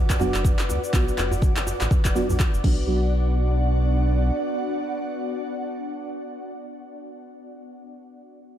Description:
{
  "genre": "afro house",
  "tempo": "123 BPM",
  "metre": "4/4",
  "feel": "swing 57% on 16ths",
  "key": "B minor",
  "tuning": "A4 = 439 Hz",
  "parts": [
    { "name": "ethereal airy pad", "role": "sustained chords", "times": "0.0-7.4 s", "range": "B3 to D6", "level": "-29 LUFS", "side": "equal", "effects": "ensemble chorus, built-in reverb, sidechain pumping" },
    { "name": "deep mellow chord stab", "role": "stabs", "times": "0.0-7.4 s", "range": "F#3 to F#4", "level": "-29 LUFS", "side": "right 1 dB", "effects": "chorus, sidechain pumping, digital delay" },
    { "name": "afro-pop drum kit", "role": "drums", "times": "0.1-2.8 s", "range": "cabasa, crash cymbal, handclaps", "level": "-30 LUFS", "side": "equal", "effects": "none" },
    { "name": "electronic kick drum", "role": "drums", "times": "0.1-2.8 s", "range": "none", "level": "-21 LUFS", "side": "equal", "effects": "none" },
    { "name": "djembe", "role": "percussion", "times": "0.1-2.8 s", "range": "none", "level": "-31 LUFS", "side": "right 1 dB", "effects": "none" },
    { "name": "round analog bass", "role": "bass", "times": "0.2-4.3 s", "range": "F#1 to D2", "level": "-23 LUFS", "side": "equal", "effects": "sidechain pumping" }
  ],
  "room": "little or no reverb",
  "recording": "none",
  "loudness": "-20 LUFS",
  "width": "side -11 dB against mid",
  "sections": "0.0-2.9 A section; 2.9-6.8 B section",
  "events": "filter sweep on analog synth bass 0.0-2.9; filter sweep on synth stab 0.0-2.9",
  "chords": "0.0 Bm",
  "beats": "0.45 | 0.93 1.42 1.91 2.40 | 2.88 3.37 3.86 4.35 | 4.84 5.32 5.81 6.30"
}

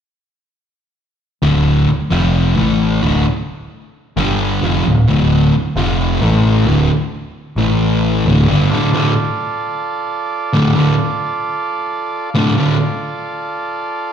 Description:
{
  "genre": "rock",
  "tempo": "132 BPM",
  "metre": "4/4",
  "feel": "straight",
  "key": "D minor",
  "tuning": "A4 = 439 Hz",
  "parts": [
    { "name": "fuzz guitar", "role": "riff", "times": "1.4-12.8 s", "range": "D2 to A3", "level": "-14 LUFS", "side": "equal", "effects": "distortion, slapback echo" },
    { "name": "growling picked electric bass", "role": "bass", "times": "1.4-8.7 s", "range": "D1 to A1", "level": "-18 LUFS", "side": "equal", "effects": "overdrive" },
    { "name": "combo organ", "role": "sustained chords", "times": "8.7-14.1 s", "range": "F4 to D5", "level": "-20 LUFS", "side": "right 3 dB", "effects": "none" }
  ],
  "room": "light reverb, digital ambience",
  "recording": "live gig heard through the venue's PA, club reverb",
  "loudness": "-13 LUFS",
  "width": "side -8 dB against mid",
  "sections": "1.4-8.7 A section; 8.7-14.1 B section",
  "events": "none",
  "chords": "1.4 D5; 2.1 F5; 2.6 A5; 3.0 D5; 4.2 G5; 4.6 Dm; 5.8 F5; 6.2 A5; 6.7 D5; 7.6 A5; 8.3 D5; 8.7 Dm",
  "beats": "| 1.43 1.89 2.34 2.80 | 3.25 3.71 4.17 4.62 | 5.08 5.53 5.99 6.44 | 6.90 7.35 7.81 8.26 | 8.71 9.17 9.62 10.08 | 10.53 10.99 11.44 11.89 | 12.35 12.80 13.26 13.71"
}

